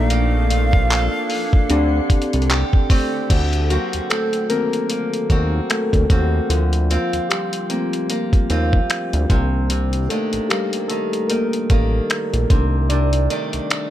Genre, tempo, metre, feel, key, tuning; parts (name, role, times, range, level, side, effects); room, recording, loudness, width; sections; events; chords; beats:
contemporary R&B; 75 BPM; 4/4; swing 58% on 16ths; A4 = 440 Hz
breathy jazz flute; melody; 0.0-2.3 s; F5; -26 LUFS; right 1 dB; ping-pong delay
muted felt-like synth keys; accompaniment; 0.0-13.9 s; Eb3 to D5; -23 LUFS; left 2 dB; chorus
granular cloud pad; sustained chords; 0.0-3.3 s; D3 to A4; -29 LUFS; left 2 dB; built-in reverb
picked acoustic archtop guitar; arpeggios; 0.0-13.9 s; C3 to A4; -26 LUFS; right 2 dB
fat analog bass; bass; 0.0-13.6 s; A1 to Eb2; -18 LUFS; equal
dusty soul sampler-style drum kit; drums; 0.1-13.9 s; crash cymbal, finger snaps, handclaps, hi-hat, kick drum; -19 LUFS; equal
little or no reverb; -16 LUFS; side -12 dB against mid
0.0-3.3 A section; 3.3-13.9 B section
synth keys solo 3.3-13.9
0.0 Bbmaj7; 1.7 D7sus4; 3.3 D7b9b13; 6.5 Gm11/D; 9.3 Cm9; 12.5 Cm69
| 0.10 0.90 1.70 2.50 | 3.30 4.10 4.90 5.70 | 6.50 7.30 8.10 8.90 | 9.70 10.50 11.30 12.10 | 12.90 13.70